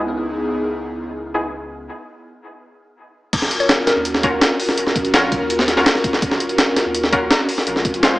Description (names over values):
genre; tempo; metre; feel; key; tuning
drum and bass, jungle; 166 BPM; 4/4; straight; Eb minor; A4 = 442 Hz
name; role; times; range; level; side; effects
airy breathy pad; sustained chords; 0.0-8.2 s; Ab3 to Bb4; -22 LUFS; equal; chorus
orchestra-hit-like synth stab; stabs; 0.0-1.4, 4.2-8.2 s; Ab3 to Bb4; -22 LUFS; left 1 dB; built-in reverb, dub echo
saturated sub bass; bass; 0.0-8.2 s; Eb1 to Eb2; -35 LUFS; equal; tube saturation
breakbeat sampler-style drum kit; drums; 3.3-8.1 s; crash cymbal, hi-hat, kick drum, snare drum; -17 LUFS; equal; small room ambience
glassy wavetable pluck; melody; 3.6-4.4 s; Bb4 to Db5; -25 LUFS; left 2 dB; chorus, dub echo
room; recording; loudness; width
moderate echo chamber reverb, RT60 1.5 s, digital ambience; small speaker sound; -15 LUFS; side -18 dB against mid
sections
0.0-3.3 A section; 3.3-8.2 B section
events
break 1.9-3.3; drop 3.3-8.2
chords
0.0 Dbm9; 3.3 Ebm9; 7.7 Bbm9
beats
0.08 | 0.44 0.80 1.16 1.52 | 1.89 2.25 2.61 2.97 | 3.33 3.69 4.05 4.42 | 4.78 5.14 5.50 5.86 | 6.22 6.58 6.95 7.31 | 7.67 8.03